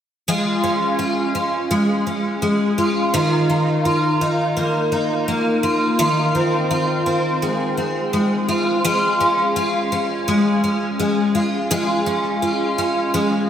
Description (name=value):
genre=dream pop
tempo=84 BPM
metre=4/4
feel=straight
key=Db major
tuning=A4 = 436 Hz
part: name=picked twelve-string acoustic guitar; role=solo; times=0.3-13.5 s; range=Eb3 to F4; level=-17 LUFS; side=equal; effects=ensemble chorus, diffuse ambient delay
room=wet lush hall reverb, RT60 2.8 s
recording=dreamy mix soaked in reverb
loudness=-17 LUFS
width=side -9 dB against mid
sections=0.3-11.7 A section; 11.7-13.5 B section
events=none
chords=0.3 Db; 3.1 Ebsus2; 6.0 Fm7; 8.9 Db/Ab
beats=| 0.28 1.00 1.71 2.43 | 3.14 3.85 4.57 5.28 | 6.00 6.71 7.43 8.14 | 8.85 9.57 10.28 11.00 | 11.71 12.43 13.14